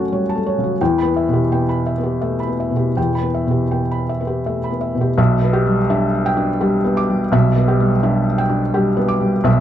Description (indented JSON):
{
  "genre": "neoclassical minimalist piano",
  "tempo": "84 BPM",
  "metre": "3/4",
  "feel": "rubato",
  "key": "unclear",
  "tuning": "A4 = 440 Hz",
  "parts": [
    { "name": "felt-muted upright piano", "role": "solo", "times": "0.0-9.6 s", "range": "B1 to D6", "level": "-15 LUFS", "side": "equal", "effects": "none" }
  ],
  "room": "light reverb",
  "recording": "dark, warm production",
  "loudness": "-15 LUFS",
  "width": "side -11 dB against mid",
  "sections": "0.0-5.2 A section; 5.2-9.6 B section",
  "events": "none",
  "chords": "0.0 F#m; 0.8 Em; 5.2 Em7/B",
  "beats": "0.10 | 0.80 1.51 2.23 | 2.97 3.71 4.45 | 5.18 5.90 6.61 | 7.33 8.04 8.76 | 9.47"
}